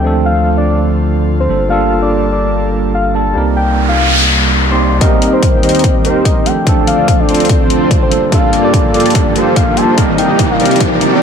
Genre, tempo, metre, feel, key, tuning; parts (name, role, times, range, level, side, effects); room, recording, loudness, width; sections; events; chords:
future bass; 145 BPM; 4/4; swing 55% on 16ths, half-time; G minor; A4 = 440 Hz
soft octave-layered synth lead; melody; 0.0-10.7 s; C5 to C6; -17 LUFS; left 3 dB; chorus, sidechain pumping, dub echo
tine electric piano; accompaniment; 0.0-11.2 s; F3 to D5; -16 LUFS; right 4 dB; medium stereo tremolo, sidechain pumping, ping-pong delay
airy breathy pad; sustained chords; 0.0-11.2 s; C2 to Bb4; -22 LUFS; equal; chorus, sidechain pumping
saturated sub bass; bass; 0.0-5.0 s; G1 to D2; -15 LUFS; equal; sidechain pumping
noise sweep and riser; sound effects; 3.6-11.2 s; -17 LUFS; equal
soft supersaw; riff; 5.0-11.2 s; Bb3 to Eb5; -14 LUFS; equal; cassette tape, sidechain pumping, low-pass filter, ping-pong delay
electronic hi-hat; drums; 5.0-11.1 s; -21 LUFS; left 7 dB
electronic kick drum; drums; 5.0-10.9 s; -13 LUFS; equal
light reverb, digital ambience; high-pass filter; -9 LUFS; side -7 dB against mid
0.0-5.0 A section; 5.0-11.2 B section
noise sweep 3.6-5.0; build-up 5.0-11.2; riser 5.0-11.2; filter sweep on supersaw synth 5.0-11.2
0.0 Dm7; 1.5 Gm9; 3.4 Cm7; 5.0 Eb6; 6.5 Dm7; 8.1 Gm9; 10.0 Cm7